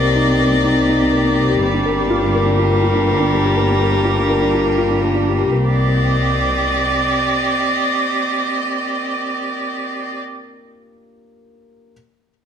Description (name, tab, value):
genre	piano and strings electronica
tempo	123 BPM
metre	4/4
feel	straight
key	C minor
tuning	A4 = 437 Hz
part	rich string quartet	sustained chords	0.0-10.2 s	G3 to Eb5	-18 LUFS	right 1 dB	none
part	felt-muted upright piano	riff	0.0-11.9 s	Bb3 to Bb4	-19 LUFS	left 2 dB	ping-pong delay
part	rich chamber double bass section	bass	0.0-6.9 s	G1 to C2	-19 LUFS	equal	none
room	moderate recital hall reverb, RT60 1.5 s, small room ambience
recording	none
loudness	-14 LUFS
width	side -8 dB against mid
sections	0.0-5.5 A section; 5.5-9.4 B section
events	none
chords	0.0 Cm7; 1.6 Gm7; 5.5 Cm7